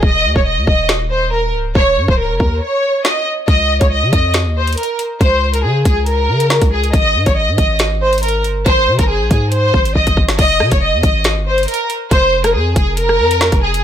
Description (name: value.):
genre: hip hop, drill.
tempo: 139 BPM.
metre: 4/4.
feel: half-time.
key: unclear.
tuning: A4 = 440 Hz.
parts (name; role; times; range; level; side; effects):
warm studio violin section; melody; 0.0-13.8 s; Ab4 to Eb5; -15 LUFS; equal; none.
long sustained 808-style bass; bass; 0.0-13.8 s; Db1 to Db3; -17 LUFS; equal; none.
drill drum kit; drums; 0.0-13.8 s; crash cymbal, hi-hat, kick drum, rim click, snare drum; -15 LUFS; equal; none.
room: digital ambience.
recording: blown-out, overdriven recording, overdrive.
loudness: -12 LUFS.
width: side -10 dB against mid.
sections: 0.0-10.4 A section; 10.4-13.8 B section.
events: break 0.0-3.5; drum fill 10.0-10.4.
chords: 0.0 Eb7(no3); 3.5 N.C.; 6.9 Abmaj7; 10.4 N.C..